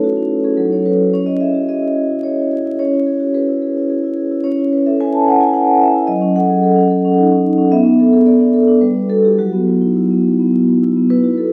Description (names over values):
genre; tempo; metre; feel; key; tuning
classical, contemporary piece for solo vibraphone; 109 BPM; 3/4; straight; F# dorian; A4 = 440 Hz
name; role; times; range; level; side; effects
vibraphone with soft mallets; solo; 0.0-11.5 s; F#3 to A5; -14 LUFS; equal; none
room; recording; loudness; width
wet recital hall reverb, RT60 1.4 s; heard from further back in the room, vinyl crackle; -14 LUFS; mono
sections
0.0-11.1 A section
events
none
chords
0.0 A; 0.6 F#5; 1.1 C#m; 4.4 C#m7; 6.1 F#m6; 7.7 Bm7; 8.8 Gmaj7; 9.4 F#7sus4